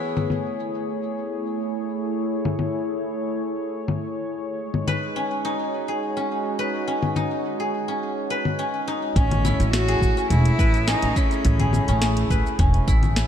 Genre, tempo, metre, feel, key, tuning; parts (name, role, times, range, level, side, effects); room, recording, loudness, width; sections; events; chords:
organic downtempo; 105 BPM; 4/4; straight; A4 = 440 Hz
warm analog pad; sustained chords; 0.0-13.3 s; G#3 to C#5; -28 LUFS; equal; chorus, sidechain pumping
guzheng; arpeggios; 0.0-13.3 s; B3 to B4; -27 LUFS; left 1 dB; ping-pong delay
afro-pop drum kit; drums; 0.2-13.3 s; congas, hi-hat, shaker, snare drum; -26 LUFS; left 3 dB; low-pass filter on hats, low-pass filter on perc, low-pass filter on snare
clear cello; melody; 9.2-12.0 s; C#4 to F#4; -27 LUFS; equal; tape echo
upright bass; bass; 9.2-13.2 s; E1 to A1; -21 LUFS; equal
electronic kick drum; drums; 9.2-13.0 s; -21 LUFS; equal
udu; percussion; 9.2-12.4 s; -26 LUFS; right 1 dB
moderate lush hall reverb, RT60 2.4 s; dark, warm production; -21 LUFS; side -9 dB against mid
0.0-9.2 A section; 9.2-13.3 B section
0.0 Amaj7; 4.6 G#7sus4; 9.2 Amaj7